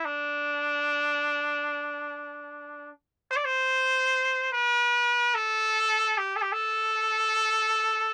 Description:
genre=turkish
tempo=free time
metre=none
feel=none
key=A makam ussak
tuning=A4 = 440 Hz
part: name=trumpet with straight mute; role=solo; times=0.0-8.1 s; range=D4 to D5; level=-26 LUFS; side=equal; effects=none
room=light reverb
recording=dry, close 1970s-style studio recording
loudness=-26 LUFS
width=mono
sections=0.0-8.1 A section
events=none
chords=none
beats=free time

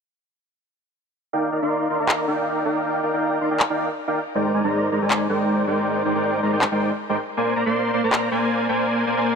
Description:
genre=future bass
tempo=159 BPM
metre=4/4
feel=swing 54% on 16ths, half-time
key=Eb major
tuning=A4 = 440 Hz
part: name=dense compressed supersaw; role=riff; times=1.3-9.4 s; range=Ab3 to C6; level=-20 LUFS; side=equal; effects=low-pass filter, ping-pong delay
part: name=electronic handclaps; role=drums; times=2.1-8.2 s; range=none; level=-26 LUFS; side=left 1 dB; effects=none
room=moderate shimmer reverb, RT60 3.9 s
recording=none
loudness=-19 LUFS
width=side -6 dB against mid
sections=1.3-9.4 A section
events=filter sweep on supersaw synth 1.3-9.4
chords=1.3 Ebmaj9; 4.4 Abmaj9#11; 7.2 Bb9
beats=| 1.33 1.71 2.09 2.46 | 2.84 3.22 3.60 3.97 | 4.35 4.73 5.11 5.48 | 5.86 6.24 6.62 6.99 | 7.37 7.75 8.12 8.50 | 8.88 9.26

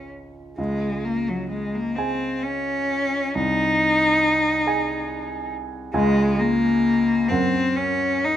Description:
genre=classical, romantic duo for cello and grand piano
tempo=38-48 BPM (dotted quarters)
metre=6/8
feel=rubato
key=unclear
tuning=A4 = 441 Hz
part: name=rich cello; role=melody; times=0.0-8.4 s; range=Gb3 to Eb4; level=-20 LUFS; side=left 1 dB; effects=none
part: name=warm grand piano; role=accompaniment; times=0.0-8.4 s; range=C2 to Ab5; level=-27 LUFS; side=right 3 dB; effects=none
room=moderate recital hall reverb, RT60 1.6 s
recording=close, detailed microphones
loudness=-19 LUFS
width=side -11 dB against mid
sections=0.6-8.4 A section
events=none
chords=0.0 Db; 0.6 Db5; 3.4 Ab/C; 5.9 Db5; 7.3 Gb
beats=| 0.58 1.97 | 3.35 4.67 | 5.95 7.30

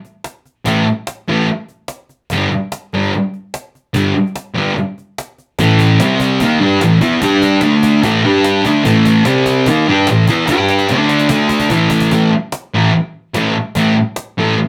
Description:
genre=garage rock duo or trio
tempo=146 BPM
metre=4/4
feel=straight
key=A minor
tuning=A4 = 440 Hz
part: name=cajon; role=drums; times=0.0-14.3 s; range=none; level=-27 LUFS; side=equal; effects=none
part: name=thick fuzz guitar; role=riff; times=0.6-14.6 s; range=G2 to G4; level=-13 LUFS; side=equal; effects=distortion
room=moderate studio ambience, RT60 0.5 s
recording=band playing live in one room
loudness=-14 LUFS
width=mono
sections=0.0-5.6 A section; 5.6-12.1 B section; 12.1-14.7 C section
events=drum fill 10.5-12.1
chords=0.0 A5; 2.3 G5; 5.6 A5; 6.0 C5; 6.4 A5; 7.2 G5; 7.6 D5; 8.0 A5; 8.2 G5; 8.7 A5; 9.3 C5; 9.7 A5; 10.5 G5; 10.9 D5; 11.7 A5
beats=0.24 | 0.65 1.06 1.48 1.89 | 2.30 2.71 3.12 3.53 | 3.94 4.35 4.76 5.17 | 5.58 5.99 6.40 6.81 | 7.22 7.63 8.04 8.45 | 8.86 9.26 9.67 10.08 | 10.49 10.90 11.30 11.71 | 12.12 12.53 12.94 13.35 | 13.76 14.17

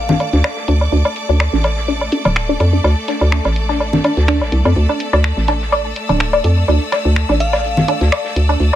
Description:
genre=minimal techno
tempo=125 BPM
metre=4/4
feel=swing 54% on 16ths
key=D minor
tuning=A4 = 440 Hz
part: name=glassy synth bell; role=melody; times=0.0-0.4, 7.4-8.1 s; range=F5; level=-24 LUFS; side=equal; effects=chorus, digital delay
part: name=hollow knocking FM bass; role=bass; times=0.0-8.7 s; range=D1 to F2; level=-15 LUFS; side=equal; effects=none
part: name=downlifter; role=sound effects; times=0.0-0.9 s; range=none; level=-39 LUFS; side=equal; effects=none
part: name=bright studio string section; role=texture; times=0.0-8.8 s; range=A3 to E6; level=-23 LUFS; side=equal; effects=none
part: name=resonant blip pluck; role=riff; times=0.1-8.8 s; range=C4 to D5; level=-20 LUFS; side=equal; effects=phaser, ping-pong delay
part: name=modern studio drum kit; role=drums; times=0.1-8.7 s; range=hi-hat, snare drum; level=-36 LUFS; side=left 1 dB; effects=none
part: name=congas and woodblock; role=percussion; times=0.1-8.8 s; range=none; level=-18 LUFS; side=equal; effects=digital delay
part: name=punchy analog drum machine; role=drums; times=0.2-8.5 s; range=finger snaps, hi-hat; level=-22 LUFS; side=equal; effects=low-pass filter on hats, low-pass filter on perc, low-pass filter on snare
room=light reverb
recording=none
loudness=-13 LUFS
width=side -12 dB against mid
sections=0.0-8.8 A section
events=filter sweep on synth arpeggio sound 0.0-8.8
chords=0.0 D5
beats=0.44 | 0.92 1.40 1.88 2.36 | 2.84 3.32 3.80 4.28 | 4.76 5.24 5.72 6.20 | 6.68 7.16 7.64 8.12 | 8.60

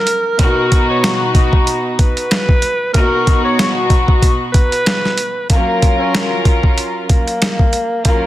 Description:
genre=hip hop, boom-bap hip-hop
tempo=94 BPM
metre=4/4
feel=swing 58% on 16ths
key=F# major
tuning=A4 = 439 Hz
part: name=breathy tenor saxophone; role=melody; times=0.0-8.3 s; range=A#3 to C#5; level=-18 LUFS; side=equal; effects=high-pass filter, low-pass filter, digital delay
part: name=boom bap sampler-style drum kit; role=drums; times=0.1-8.2 s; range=hi-hat, kick drum, snare drum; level=-13 LUFS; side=equal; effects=none
part: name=warm studio string section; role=accompaniment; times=0.4-8.3 s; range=B2 to A#4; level=-18 LUFS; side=left 1 dB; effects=cassette tape, high-pass filter, low-pass filter
room=light reverb, small room ambience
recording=dense, heavily limited modern master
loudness=-12 LUFS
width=side -14 dB against mid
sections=0.0-5.5 A section; 5.5-8.3 B section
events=none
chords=0.4 B; 5.5 F#maj7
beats=| 0.39 1.03 1.67 2.31 | 2.94 3.58 4.22 4.86 | 5.50 6.14 6.77 7.41 | 8.05

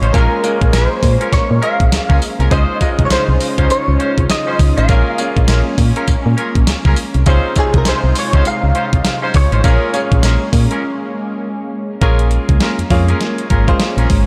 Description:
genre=R&B, new jack swing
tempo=101 BPM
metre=4/4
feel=swing 60% on 16ths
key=unclear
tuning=A4 = 440 Hz
part: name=direct-recorded clean electric guitar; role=melody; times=0.0-11.4 s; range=Ab4 to F5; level=-22 LUFS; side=equal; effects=ensemble chorus, delay
part: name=bright grand piano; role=accompaniment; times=0.0-14.3 s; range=C3 to Eb5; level=-26 LUFS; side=equal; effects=none
part: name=lush unison pad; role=sustained chords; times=0.0-14.3 s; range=C3 to C5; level=-26 LUFS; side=equal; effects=chorus, phaser
part: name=warm horn section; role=stabs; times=0.0-14.1 s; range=Db4 to C5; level=-26 LUFS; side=equal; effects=delay
part: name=solid FM bass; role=bass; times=0.0-14.2 s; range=Ab1 to Bb2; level=-16 LUFS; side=equal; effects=none
part: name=clean 12-bit digital drum machine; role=drums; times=0.0-14.3 s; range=hi-hat, kick drum, snare drum, tambourine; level=-19 LUFS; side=equal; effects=none
room=moderate church reverb, RT60 4.2 s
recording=dreamy mix soaked in reverb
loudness=-14 LUFS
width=mono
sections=0.0-12.0 A section; 12.0-14.3 B section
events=break 10.8-12.0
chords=0.1 Bbm7; 2.5 Dbmaj9; 4.9 Bbm7; 7.3 Dbmaj9; 9.6 Bbm7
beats=| 0.14 0.73 1.32 1.92 | 2.51 3.11 3.70 4.29 | 4.89 5.48 6.08 6.67 | 7.26 7.86 8.45 9.05 | 9.64 10.23 10.83 11.42 | 12.02 12.61 13.21 13.80

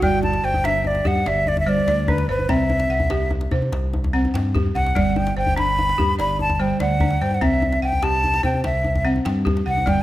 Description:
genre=west african traditional, West African string and xylophone music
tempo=98 BPM (dotted quarters)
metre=12/8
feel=straight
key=unclear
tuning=A4 = 440 Hz
part: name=breathy concert flute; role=melody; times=0.0-10.0 s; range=B4 to B5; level=-22 LUFS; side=equal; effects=none
part: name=balafon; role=arpeggios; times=0.0-10.0 s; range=G3 to G5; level=-24 LUFS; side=right 1 dB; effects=tape echo
part: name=smooth gliding synth bass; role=bass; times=0.0-10.0 s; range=G1 to C3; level=-23 LUFS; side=equal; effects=none
part: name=djembe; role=percussion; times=0.0-10.0 s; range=none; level=-26 LUFS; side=left 2 dB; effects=none
room=moderate recital hall reverb, RT60 1.6 s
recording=none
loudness=-18 LUFS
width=side -15 dB against mid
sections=0.0-10.0 A section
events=drum fill 4.6-5.0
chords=0.0 G5; 2.5 C; 5.0 G; 7.4 C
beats=| 0.03 0.64 1.26 1.88 | 2.49 3.11 3.72 4.34 | 4.95 5.57 6.18 6.80 | 7.41 8.03 8.64 9.26 | 9.87

